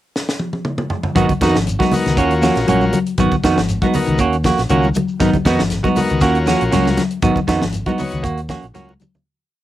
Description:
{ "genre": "afrobeat", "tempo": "119 BPM", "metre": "4/4", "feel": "straight", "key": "G# dorian", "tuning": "A4 = 440 Hz", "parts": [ { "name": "tight funk drum kit", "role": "drums", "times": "0.2-9.1 s", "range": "hi-hat, kick drum, snare drum, toms", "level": "-22 LUFS", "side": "equal", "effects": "cassette tape" }, { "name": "overdriven combo organ", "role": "accompaniment", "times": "1.2-8.9 s", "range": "B3 to C#5", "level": "-21 LUFS", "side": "left 3 dB", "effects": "cassette tape" }, { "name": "mellow electric guitar", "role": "arpeggios", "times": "1.2-9.2 s", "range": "D#3 to F#3", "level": "-21 LUFS", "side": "left 5 dB", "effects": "spring reverb, cassette tape" }, { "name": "semi-hollow electric guitar", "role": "stabs", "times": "1.2-8.9 s", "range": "D#3 to F#4", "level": "-18 LUFS", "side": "right 5 dB", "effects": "cassette tape" }, { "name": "fingered electric bass", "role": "bass", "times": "1.2-9.0 s", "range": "G#1 to E#2", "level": "-21 LUFS", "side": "equal", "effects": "none" }, { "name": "congas", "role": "percussion", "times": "1.2-9.3 s", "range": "none", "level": "-24 LUFS", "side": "right 2 dB", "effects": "none" }, { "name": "shekere", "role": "percussion", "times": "1.2-9.3 s", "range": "none", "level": "-30 LUFS", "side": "left 1 dB", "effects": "none" } ], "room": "light reverb", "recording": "home recording on cassette", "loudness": "-14 LUFS", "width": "side -13 dB against mid", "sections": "0.0-1.2 pickup bar; 1.2-9.2 groove", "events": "drum fill 0.1-1.2, 8.9-9.2; fade-out 7.2-9.2", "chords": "0.0 N.C.; 1.2 G#m7; 2.2 D#m7; 3.2 G#m7; 4.2 D#m7; 5.2 G#m7; 6.2 D#m7; 7.2 G#m7; 8.2 D#m7", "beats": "0.14 0.65 | 1.16 1.66 2.17 2.68 | 3.18 3.69 4.19 4.70 | 5.21 5.71 6.22 6.72 | 7.23 7.73 8.24 8.74" }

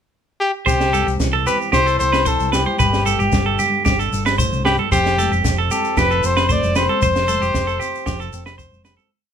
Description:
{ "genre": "highlife guitar band", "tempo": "114 BPM", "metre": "4/4", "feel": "straight", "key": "unclear", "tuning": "A4 = 442 Hz", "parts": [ { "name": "breathy trumpet", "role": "melody", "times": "0.4-8.3 s", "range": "G4 to D5", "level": "-20 LUFS", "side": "left 3 dB", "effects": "none" }, { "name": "flamenco guitar", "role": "accompaniment", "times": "0.7-9.1 s", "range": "F2 to F4", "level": "-29 LUFS", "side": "left 5 dB", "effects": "none" }, { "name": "clean electric guitar", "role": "arpeggios", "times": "0.7-9.1 s", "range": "G4 to C5", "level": "-21 LUFS", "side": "right 5 dB", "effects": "none" }, { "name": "hollow-body short-scale fingered electric bass", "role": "bass", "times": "0.7-9.0 s", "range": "F1 to C2", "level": "-23 LUFS", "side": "equal", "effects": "none" }, { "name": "compact cocktail drum kit", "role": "drums", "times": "0.7-9.0 s", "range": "kick drum, snare drum", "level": "-22 LUFS", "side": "right 1 dB", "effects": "none" }, { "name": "shekere", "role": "percussion", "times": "0.7-9.1 s", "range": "none", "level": "-29 LUFS", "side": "left 4 dB", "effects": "none" }, { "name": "congas", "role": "percussion", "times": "0.9-9.1 s", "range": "none", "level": "-30 LUFS", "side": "right 2 dB", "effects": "none" } ], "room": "moderate studio reverb, RT60 0.9 s", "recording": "band playing live in one room", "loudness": "-15 LUFS", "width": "side -8 dB against mid", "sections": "0.0-0.7 pickup bar; 0.7-9.1 A section", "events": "fade-out 7.0-9.1", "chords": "0.0 N.C.; 0.7 C; 2.8 G; 4.9 F", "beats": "0.14 | 0.67 1.20 1.73 2.27 | 2.80 3.33 3.86 4.38 | 4.91 5.44 5.96 6.49 | 7.02 7.54 8.06 8.59" }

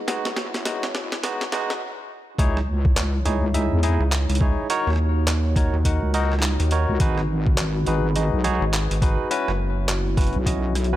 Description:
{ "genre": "glitch hop", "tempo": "104 BPM", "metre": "4/4", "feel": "swing 61% on 16ths", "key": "C# dorian", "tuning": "A4 = 440 Hz", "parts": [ { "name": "dark analog pad", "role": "sustained chords", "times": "0.0-11.0 s", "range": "G#3 to C#5", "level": "-32 LUFS", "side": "left 1 dB", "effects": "chorus, phaser, sidechain pumping" }, { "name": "barky tine electric piano", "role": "stabs", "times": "0.1-11.0 s", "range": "G#3 to F#5", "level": "-26 LUFS", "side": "equal", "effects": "overdrive, medium stereo tremolo, sidechain pumping, ping-pong delay" }, { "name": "boom bap sampler-style drum kit", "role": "drums", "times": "0.1-11.0 s", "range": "handclaps, hi-hat, rim click, snare drum", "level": "-28 LUFS", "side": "equal", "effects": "studio reverb" }, { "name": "electronic kick drum", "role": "drums", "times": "0.1-10.6 s", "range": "none", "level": "-21 LUFS", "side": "equal", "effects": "high-pass filter on kick, studio reverb" }, { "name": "wobble bass", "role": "bass", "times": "0.3-11.0 s", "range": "F#1 to E2", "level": "-23 LUFS", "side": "equal", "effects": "chorus, high-pass filter" }, { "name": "rubbery square bass", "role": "bass", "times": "4.0-10.3 s", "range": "F#1 to D#2", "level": "-22 LUFS", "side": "equal", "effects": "none" } ], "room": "little or no reverb", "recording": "high-pass filter", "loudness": "-20 LUFS", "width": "side -14 dB against mid", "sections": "0.0-2.4 A section; 2.4-11.0 B section", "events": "build-up 0.0-2.4; drum fill 0.0-1.8; filter sweep 0.0-2.4; stop 1.8-2.4; drop 2.4-11.0", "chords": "0.1 F#7sus4; 2.4 C#madd9; 4.7 D#m7; 7.0 G#m7; 9.3 F#7sus4", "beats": "| 0.08 0.66 1.23 1.81 | 2.39 2.96 3.54 4.12 | 4.70 5.27 5.85 6.43 | 7.00 7.58 8.16 8.73 | 9.31 9.89 10.46" }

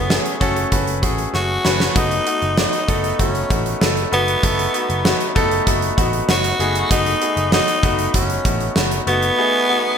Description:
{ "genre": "1980s-style pop", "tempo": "97 BPM", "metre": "4/4", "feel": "straight", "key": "unclear", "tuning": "A4 = 440 Hz", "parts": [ { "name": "raspy tenor saxophone", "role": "melody", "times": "0.0-10.0 s", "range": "B3 to F#4", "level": "-20 LUFS", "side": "equal", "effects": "ping-pong delay" }, { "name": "bright concert grand piano", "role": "accompaniment", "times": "0.0-10.0 s", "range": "A3 to B4", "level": "-21 LUFS", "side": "left 1 dB", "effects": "none" }, { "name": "vintage muted picked electric bass", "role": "bass", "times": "0.0-9.3 s", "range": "F#1 to A1", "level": "-24 LUFS", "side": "equal", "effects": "none" }, { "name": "gated 80s drum kit", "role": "drums", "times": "0.1-9.4 s", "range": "hi-hat, kick drum, snare drum", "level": "-20 LUFS", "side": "right 1 dB", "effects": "gated reverb" } ], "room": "moderate plate reverb, RT60 1.4 s, small room ambience", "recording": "bright 1980s-style digital production", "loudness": "-15 LUFS", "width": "side -7 dB against mid", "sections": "0.0-10.0 A section", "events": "drum fill 1.3-2.0", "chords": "0.0 F#madd9; 2.0 B7/F#", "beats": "0.10 0.72 1.34 | 1.96 2.58 3.19 3.81 | 4.43 5.05 5.67 6.29 | 6.91 7.53 8.14 8.76 | 9.38" }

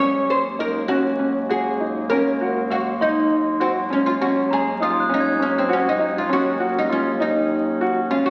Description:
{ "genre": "contemporary instrumental, chamber music in an uneven meter", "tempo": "199 BPM (eighths)", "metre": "7/8", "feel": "straight", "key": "unclear", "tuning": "A4 = 438 Hz", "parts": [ { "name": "oud", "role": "melody", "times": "0.0-8.3 s", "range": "C4 to Db5", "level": "-25 LUFS", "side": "equal", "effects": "none" }, { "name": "warm woodwind section", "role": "sustained chords", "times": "0.0-8.2 s", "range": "Eb3 to Db4", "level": "-33 LUFS", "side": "equal", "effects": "none" }, { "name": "felt-muted upright piano", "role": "arpeggios", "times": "0.0-8.3 s", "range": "Db4 to F5", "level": "-24 LUFS", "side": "equal", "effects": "none" }, { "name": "mellow bass clarinet", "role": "bass", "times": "0.0-8.2 s", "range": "Eb2", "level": "-31 LUFS", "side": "equal", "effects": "none" }, { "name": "glockenspiel with soft plastic mallets", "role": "texture", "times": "0.0-6.9 s", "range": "Bb5 to Ab6", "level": "-30 LUFS", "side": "equal", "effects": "none" } ], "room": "wet scoring stage reverb, RT60 1.8 s", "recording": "very old 78 rpm record, vinyl crackle", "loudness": "-21 LUFS", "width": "mono", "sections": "0.0-8.3 A section", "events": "none", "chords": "0.0 Gbadd9/Eb; 6.3 Ebm7", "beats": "0.28 0.59 0.89 1.19 1.50 1.80 | 2.10 2.40 2.71 3.01 3.31 3.61 3.91 | 4.21 4.50 4.80 5.10 5.40 5.70 6.00 | 6.29 6.60 6.90 7.20 7.50 7.81 8.11" }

